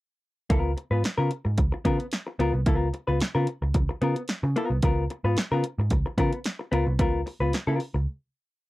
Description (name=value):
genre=funk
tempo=111 BPM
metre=4/4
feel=straight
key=Db mixolydian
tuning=A4 = 441 Hz
part: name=vintage hollow-body jazz guitar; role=accompaniment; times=0.5-8.0 s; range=Cb4 to Cb5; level=-28 LUFS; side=left 2 dB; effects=none
part: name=vintage muted picked electric bass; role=bass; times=0.5-8.1 s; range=C2 to Db3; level=-26 LUFS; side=right 1 dB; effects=none
part: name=punchy analog drum machine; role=drums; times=0.5-7.9 s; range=hi-hat, kick drum, snare drum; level=-26 LUFS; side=right 1 dB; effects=none
room=little or no reverb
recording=dry, close 1970s-style studio recording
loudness=-23 LUFS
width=side -18 dB against mid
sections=0.5-8.7 A section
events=break 8.1-8.7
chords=0.5 Db6